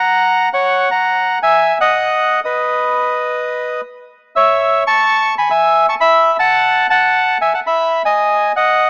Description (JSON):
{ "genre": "tango", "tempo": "118 BPM", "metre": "4/4", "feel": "rubato", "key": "E major", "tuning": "A4 = 440 Hz", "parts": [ { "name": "bandoneon", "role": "solo", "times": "0.0-8.9 s", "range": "B4 to C#6", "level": "-14 LUFS", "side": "equal", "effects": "none" } ], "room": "moderate lush hall reverb, RT60 2.2 s", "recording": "rough home demo mix, small speaker sound", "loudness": "-14 LUFS", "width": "mono", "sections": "0.0-8.9 A section", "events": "none", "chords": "0.0 F#7/C#; 2.1 B; 4.1 E; 6.1 A5; 8.2 D#madd11" }